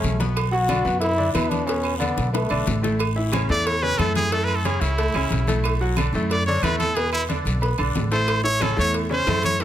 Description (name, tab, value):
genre	latin, salsa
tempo	182 BPM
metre	4/4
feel	straight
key	A major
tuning	A4 = 436 Hz
part	bright trombone	melody	0.0-2.8 s	A3 to F#4	-24 LUFS	left 1 dB	none
part	bright upright piano	accompaniment	0.0-9.6 s	A2 to B5	-26 LUFS	left 1 dB	none
part	upright bass	bass	0.0-9.6 s	A1 to F#2	-24 LUFS	equal	none
part	congas	percussion	0.0-9.6 s	none	-31 LUFS	left 2 dB	none
part	cowbell and bongos	percussion	0.0-9.6 s	none	-32 LUFS	left 1 dB	none
part	guiro	percussion	0.0-9.6 s	none	-37 LUFS	left 6 dB	none
part	agogo bells and timbales	percussion	0.4-9.6 s	none	-32 LUFS	right 11 dB	none
part	claves	percussion	0.4-9.4 s	none	-38 LUFS	right 6 dB	none
part	brilliant trumpet	melody	3.5-9.6 s	E4 to D5	-24 LUFS	equal	none
room	moderate large studio reverb, RT60 1.3 s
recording	close, detailed microphones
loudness	-19 LUFS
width	side -11 dB against mid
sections	0.0-3.0 A section; 3.0-9.6 B section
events	drum fill 2.2-3.0; trumpet solo 3.0-9.6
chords	0.4 Bm; 1.7 E5; 3.0 A; 4.3 F#m7; 5.6 Bm7; 7.0 E5; 8.3 A